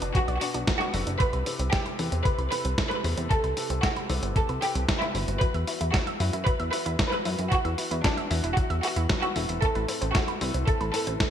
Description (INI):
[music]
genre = italo disco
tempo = 114 BPM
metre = 4/4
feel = straight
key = A dorian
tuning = A4 = 440 Hz
[part]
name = clear studio violin section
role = melody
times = 0.0-11.3 s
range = D4 to B4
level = -30 LUFS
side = right 1 dB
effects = ping-pong delay
[part]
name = analog pluck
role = arpeggios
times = 0.0-11.3 s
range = F#3 to E5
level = -36 LUFS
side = right 2 dB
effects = chorus, ping-pong delay
[part]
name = clear grand piano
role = stabs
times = 0.0-11.3 s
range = A2 to B4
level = -35 LUFS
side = left 4 dB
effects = none
[part]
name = chorused synth bass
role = bass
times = 0.0-11.2 s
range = E1 to F#2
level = -28 LUFS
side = equal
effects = none
[part]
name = dusty soul sampler-style drum kit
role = drums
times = 0.0-11.3 s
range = hi-hat, snare drum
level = -31 LUFS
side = equal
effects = small room ambience, gated reverb
[part]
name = electronic kick drum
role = drums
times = 0.1-11.3 s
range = none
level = -26 LUFS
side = equal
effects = small room ambience
[sound]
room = moderate lush hall reverb, RT60 2.0 s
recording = bright 1980s-style digital production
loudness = -24 LUFS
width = side -9 dB against mid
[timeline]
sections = 0.0-11.3 A section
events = none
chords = 0.0 Bm; 1.2 Amadd9/C; 5.4 Esus2; 9.6 Amadd9